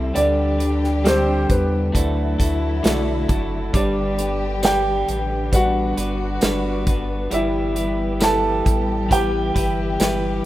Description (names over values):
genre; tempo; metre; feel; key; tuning
pop ballad; 67 BPM; 4/4; straight; G major; A4 = 440 Hz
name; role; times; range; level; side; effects
clear grand piano; melody; 0.0-10.5 s; B3 to A5; -23 LUFS; right 1 dB; none
felt-muted upright piano; accompaniment; 0.0-10.5 s; D3 to C5; -27 LUFS; right 2 dB; none
warm symphonic string section; sustained chords; 0.0-10.5 s; D3 to G4; -28 LUFS; left 1 dB; none
electric guitar at the edge of break-up; arpeggios; 0.0-10.5 s; D3 to B4; -26 LUFS; left 2 dB; tape echo
warm sub bass; bass; 0.0-10.4 s; F#1 to E2; -24 LUFS; equal; none
natural country drum kit; drums; 0.2-10.2 s; hi-hat, kick drum, snare drum; -21 LUFS; equal; none
tambourine; percussion; 4.6-10.2 s; none; -32 LUFS; right 2 dB; none
room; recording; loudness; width
small room ambience; rough home demo mix; -18 LUFS; side -15 dB against mid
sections
0.0-10.5 A section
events
none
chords
0.2 G/D; 1.9 Dadd9; 3.7 G; 7.3 Em/G